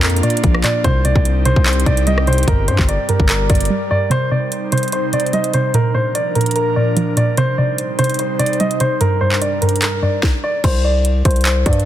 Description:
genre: hip hop, trap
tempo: 147 BPM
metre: 4/4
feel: half-time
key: C minor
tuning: A4 = 440 Hz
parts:
  - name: dark grand piano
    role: melody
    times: 0.0-11.8 s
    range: Bb4 to Eb5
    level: -20 LUFS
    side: equal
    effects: low-pass filter, tape echo
  - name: soft round pluck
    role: accompaniment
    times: 0.0-10.6 s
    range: G2 to G3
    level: -19 LUFS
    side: right 1 dB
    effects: chorus, low-pass filter
  - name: airy breathy pad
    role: sustained chords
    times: 0.0-10.2 s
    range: G2 to D5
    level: -23 LUFS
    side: equal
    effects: chorus
  - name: distorted 808-style bass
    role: bass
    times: 0.0-3.7, 10.6-11.9 s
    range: G1 to G2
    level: -17 LUFS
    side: equal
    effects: distortion
  - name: trap drum kit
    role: drums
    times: 0.0-11.9 s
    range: crash cymbal, handclaps, hi-hat, kick drum, rim click, snare drum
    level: -18 LUFS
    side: equal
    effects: none
room: light reverb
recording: dense, heavily limited modern master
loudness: -14 LUFS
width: side -12 dB against mid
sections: 0.0-4.1 A section; 4.1-10.6 B section; 10.6-11.9 C section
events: break 3.7-4.1; filter sweep 10.6-11.9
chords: 0.0 Bb; 0.8 Cm; 2.5 Gm; 4.1 Cm; 5.7 Bb; 7.4 Cm; 9.0 Gm; 10.6 C5

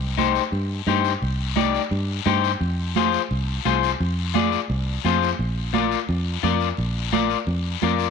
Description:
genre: latin, cumbia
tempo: 172 BPM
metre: 4/4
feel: straight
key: C minor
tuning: A4 = 441 Hz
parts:
  - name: fingered electric bass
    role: bass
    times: 0.0-8.1 s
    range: Bb1 to G2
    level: -24 LUFS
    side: equal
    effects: none
  - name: electric guitar at the edge of break-up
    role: accompaniment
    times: 0.2-8.1 s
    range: Eb4 to D5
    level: -24 LUFS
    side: left 14 dB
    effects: none
  - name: congas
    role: percussion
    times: 0.2-8.0 s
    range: none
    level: -26 LUFS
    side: right 11 dB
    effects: none
  - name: guiro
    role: percussion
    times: 0.2-8.1 s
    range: none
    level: -32 LUFS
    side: left 15 dB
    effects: none
room: light reverb, studio reverb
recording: 1960s-style stereo with parts hard left and right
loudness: -20 LUFS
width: side -6 dB against mid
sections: 0.0-8.1 A section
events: none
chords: 0.0 Cm; 2.6 Fm; 5.4 Bb

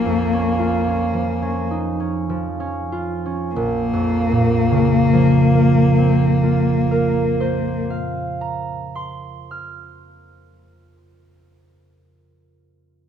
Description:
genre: classical, impressionist duo for cello and harp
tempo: 31-38 BPM (dotted quarters)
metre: 12/8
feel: rubato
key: Bb minor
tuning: A4 = 439 Hz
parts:
  - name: rich cello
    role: melody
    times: 0.0-7.8 s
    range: Bb3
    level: -20 LUFS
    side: left 3 dB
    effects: none
  - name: concert harp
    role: accompaniment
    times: 0.0-12.3 s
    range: Bb1 to F6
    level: -18 LUFS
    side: right 2 dB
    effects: none
room: wet scoring stage reverb, RT60 1.8 s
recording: minimal, uncompressed stereo recording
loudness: -16 LUFS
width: side -8 dB against mid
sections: 0.0-3.6 A section; 3.6-10.8 B section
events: slowing down 0.0-3.6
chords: 0.0 Bbm; 3.6 Bbmadd9

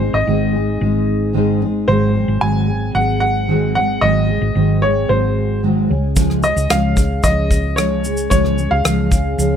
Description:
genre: acoustic pop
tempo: 112 BPM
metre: 4/4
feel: straight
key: Ab major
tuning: A4 = 440 Hz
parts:
  - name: clear upright piano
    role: melody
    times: 0.0-9.6 s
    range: C5 to Ab5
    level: -20 LUFS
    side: equal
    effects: plate reverb
  - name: fingerpicked steel-string acoustic guitar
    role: accompaniment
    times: 0.0-9.6 s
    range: Ab2 to Ab4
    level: -18 LUFS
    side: equal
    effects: double-tracked left and right, plate reverb
  - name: hollow-body short-scale fingered electric bass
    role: bass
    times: 0.0-9.6 s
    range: Ab1 to Db2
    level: -19 LUFS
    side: equal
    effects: none
  - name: natural country drum kit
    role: drums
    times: 6.2-9.5 s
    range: kick drum, rim click, shaker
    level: -18 LUFS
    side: equal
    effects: none
room: light reverb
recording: none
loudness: -14 LUFS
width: side -8 dB against mid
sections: 0.0-9.6 A section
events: none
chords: 0.0 Ab; 1.9 Ab7; 5.9 Db

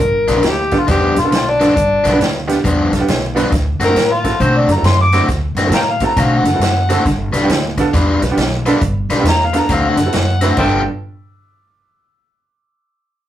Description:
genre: electric blues shuffle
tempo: 136 BPM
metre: 4/4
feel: swing 64% on 8ths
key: unclear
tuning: A4 = 440 Hz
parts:
  - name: overdriven harmonica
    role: melody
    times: 0.0-10.8 s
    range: D4 to D6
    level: -16 LUFS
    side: left 2 dB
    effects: none
  - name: crunchy overdriven guitar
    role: riff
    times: 0.0-10.8 s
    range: G2 to B4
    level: -18 LUFS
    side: left 2 dB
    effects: none
  - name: upright bass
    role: bass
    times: 0.0-10.8 s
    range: G1 to B2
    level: -18 LUFS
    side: equal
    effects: none
  - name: swinging big-band drum kit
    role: drums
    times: 0.0-10.7 s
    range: crash cymbal, hi-hat, kick drum, snare drum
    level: -20 LUFS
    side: right 1 dB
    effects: none
  - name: clear upright piano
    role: accompaniment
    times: 0.3-10.9 s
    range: B3 to C5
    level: -20 LUFS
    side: right 4 dB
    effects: none
room: moderate studio ambience, RT60 0.5 s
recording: rough rehearsal-room recording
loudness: -12 LUFS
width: side -12 dB against mid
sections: 0.0-10.6 A section; 10.6-12.3 B section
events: none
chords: 0.0 G7; 3.5 D7; 7.1 G7; 9.7 D7; 10.6 G9

